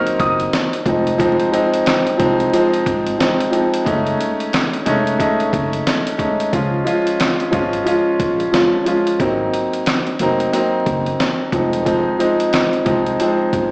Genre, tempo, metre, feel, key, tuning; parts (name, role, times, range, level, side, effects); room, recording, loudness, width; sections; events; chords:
hip hop, boom-bap hip-hop; 90 BPM; 4/4; swing 60% on 16ths; Db major; A4 = 440 Hz
warm upright piano; melody; 0.0-0.7 s; Eb6 to F6; -22 LUFS; equal; tape echo
warm grand piano; accompaniment; 0.0-13.7 s; F3 to F4; -16 LUFS; equal
trip hop sampler-style drum kit; drums; 0.1-13.7 s; hi-hat, kick drum, snare drum; -22 LUFS; equal
upright bass; bass; 0.2-13.7 s; F1 to Db2; -25 LUFS; equal
light reverb, studio reverb; played on a big sound system in a bare room, stone room reverb, vinyl crackle, small speaker sound; -14 LUFS; side -30 dB against mid
0.0-6.5 A section; 6.5-13.7 B section
0.0 Ab7 (rootless); 0.9 Fm7; 3.9 Gbm6; 6.5 Db; 9.2 Ab7 (rootless); 11.5 Fm7